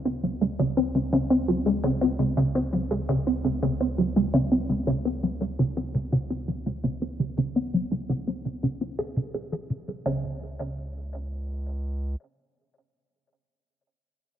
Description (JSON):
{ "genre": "ambient, sequencer-driven space music", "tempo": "84 BPM", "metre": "4/4", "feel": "straight", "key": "unclear", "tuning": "A4 = 441 Hz", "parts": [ { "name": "resonant blip pluck", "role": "riff", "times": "0.0-10.4 s", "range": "Db3 to Ab4", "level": "-24 LUFS", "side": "equal", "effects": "phaser, lush chorus, tape echo" }, { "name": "round analog bass", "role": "bass", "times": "0.0-12.2 s", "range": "Db2", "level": "-35 LUFS", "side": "equal", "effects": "none" } ], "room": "wet plate reverb, RT60 2.7 s", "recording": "none", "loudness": "-24 LUFS", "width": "side -10 dB against mid", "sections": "0.0-10.1 A section; 10.1-12.9 B section", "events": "fade-out on analog synth bass 0.0-10.1", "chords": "0.0 Db5; 10.1 N.C." }